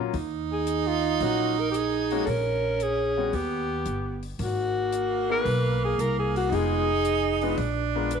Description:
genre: jazz, small-group swing and bop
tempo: 113 BPM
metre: 4/4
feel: swing 69% on 8ths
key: Eb minor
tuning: A4 = 440 Hz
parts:
  - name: clear concert grand piano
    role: accompaniment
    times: 0.0-8.1 s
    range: Gb3 to Cb5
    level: -31 LUFS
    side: left 14 dB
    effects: none
  - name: upright bass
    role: bass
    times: 0.0-8.2 s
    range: F1 to Bb2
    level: -30 LUFS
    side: left 1 dB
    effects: none
  - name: clear tenor saxophone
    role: second line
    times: 0.1-8.2 s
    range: Bb3 to Eb4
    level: -28 LUFS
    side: right 11 dB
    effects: none
  - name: compact cocktail drum kit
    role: drums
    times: 0.1-8.2 s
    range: hi-hat, kick drum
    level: -41 LUFS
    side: left 5 dB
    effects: none
  - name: breathy alto saxophone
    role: melody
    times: 0.5-8.2 s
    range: F4 to Cb5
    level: -27 LUFS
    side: left 3 dB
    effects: none
room: moderate spring reverb, RT60 1.4 s, studio ambience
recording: 1960s-style stereo with parts hard left and right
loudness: -23 LUFS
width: side -6 dB against mid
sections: 0.0-4.4 A section; 4.4-8.2 B section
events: none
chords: 0.1 Ebm7; 2.3 Bbm7; 3.3 Ebaug; 4.4 Abm9; 6.5 Fm7b5; 7.6 Bb7b9

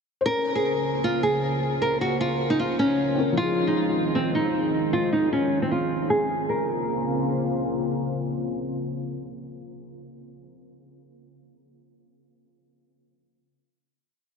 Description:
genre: hip hop, trap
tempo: 154 BPM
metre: 4/4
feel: half-time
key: Bb minor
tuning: A4 = 441 Hz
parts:
  - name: felt-muted upright piano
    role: accompaniment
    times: 0.2-6.3 s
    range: F3 to C5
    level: -30 LUFS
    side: left 4 dB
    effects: low-pass filter
  - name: nylon-string guitar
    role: melody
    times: 0.3-7.6 s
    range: C4 to Bb4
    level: -24 LUFS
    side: equal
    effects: low-pass filter, ping-pong delay
  - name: dark analog pad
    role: sustained chords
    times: 0.3-10.4 s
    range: Db3 to C5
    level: -28 LUFS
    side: equal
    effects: chorus
room: wet huge ambient reverb, RT60 6.6 s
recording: dreamy mix soaked in reverb, low-pass filter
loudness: -22 LUFS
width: side -5 dB against mid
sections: 0.3-6.5 breakdown; 6.5-9.6 final chord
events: filter sweep 0.3-6.5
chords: 0.3 Bbmadd9; 3.4 Fm7; 6.5 Bbmadd9

